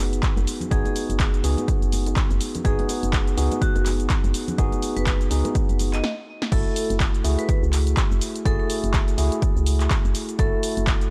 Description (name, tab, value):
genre	deep house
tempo	124 BPM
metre	4/4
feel	swing 58% on 16ths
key	F# dorian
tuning	A4 = 440 Hz
part	tine electric piano	stabs	0.0-11.1 s	A3 to A4	-30 LUFS	equal	sidechain pumping, tape echo
part	woody FM bass	bass	0.0-11.1 s	F#1 to C#2	-26 LUFS	equal	tube saturation, sidechain pumping
part	punchy analog drum machine	drums	0.1-11.1 s	crash cymbal, handclaps, hi-hat, shaker, snare drum	-32 LUFS	equal	none
part	electronic kick drum	drums	0.2-11.0 s	none	-25 LUFS	equal	none
part	congas and bongos	percussion	0.4-6.0 s	none	-38 LUFS	equal	none
part	vibraphone with medium hard mallets	melody	0.7-10.8 s	F#4 to D#5	-35 LUFS	equal	tape echo
room	digital ambience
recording	dry, gritty hardware recording, cassette tape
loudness	-22 LUFS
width	mono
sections	0.0-6.5 A section; 6.5-11.1 B section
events	drum fill 6.0-6.5; stop 6.0-6.5; drop 6.5-11.1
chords	0.0 G#m7/F#; 6.5 F#m9